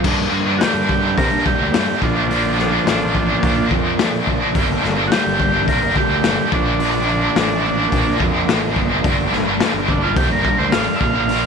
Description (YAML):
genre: psychedelic rock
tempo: 107 BPM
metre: 4/4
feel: straight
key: G minor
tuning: A4 = 437 Hz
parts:
  - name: biting overdriven guitar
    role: riff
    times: 0.0-11.5 s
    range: G2 to D4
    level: -18 LUFS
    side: equal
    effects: harmonic tremolo
  - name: fuzz fingered electric bass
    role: bass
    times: 0.0-11.5 s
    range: G1 to C3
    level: -24 LUFS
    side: right 1 dB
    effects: overdrive
  - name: raw garage drum kit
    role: drums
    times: 0.0-11.4 s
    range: crash cymbal, hi-hat, kick drum, snare drum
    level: -21 LUFS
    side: left 3 dB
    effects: none
  - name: combo organ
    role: melody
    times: 0.6-11.5 s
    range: F3 to F5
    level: -22 LUFS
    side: right 2 dB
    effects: tape echo
room: light reverb, small room ambience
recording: 1960s-style stereo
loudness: -15 LUFS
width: side -6 dB against mid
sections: 0.0-11.5 A section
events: transistor combo organ solo 0.0-11.5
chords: 0.0 Gm; 2.0 Bbmaj7; 4.6 Gm; 6.5 Bbmaj7; 9.1 Gm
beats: | 0.05 0.61 1.18 1.74 | 2.30 2.87 3.43 3.99 | 4.55 5.12 5.68 6.24 | 6.80 7.37 7.93 8.49 | 9.05 9.61 10.17 10.73 | 11.29